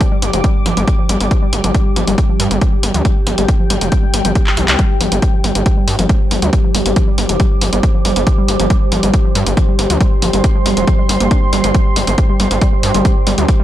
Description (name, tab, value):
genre	driving peak-time techno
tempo	138 BPM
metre	4/4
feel	straight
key	unclear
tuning	A4 = 440 Hz
part	warbly dusty pluck	riff	0.0-13.6 s	F3 to D4	-22 LUFS	equal	chorus, tube saturation, sidechain pumping, tape echo
part	electronic kick drum	drums	0.0-13.6 s	none	-14 LUFS	equal	none
part	punchy analog drum machine	drums	0.0-13.6 s	handclaps, hi-hat	-20 LUFS	left 1 dB	sidechain pumping on hats
part	deep dark ambient pad	texture	0.0-13.6 s	G3 to D6	-20 LUFS	equal	chorus, built-in reverb, sidechain pumping
part	gritty driven synth bass	bass	0.2-13.5 s	F1 to G2	-17 LUFS	equal	sidechain pumping
room	little or no reverb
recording	dry, gritty hardware recording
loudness	-11 LUFS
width	side -13 dB against mid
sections	0.0-13.6 A section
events	drum fill 4.5-4.8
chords	0.0 G5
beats	0.01 0.44 0.88 | 1.31 1.75 2.18 2.62 | 3.05 3.48 3.92 4.35 | 4.79 5.22 5.66 6.09 | 6.53 6.96 7.40 7.83 | 8.27 8.70 9.14 9.57 | 10.01 10.44 10.88 11.31 | 11.75 12.18 12.62 13.05 | 13.48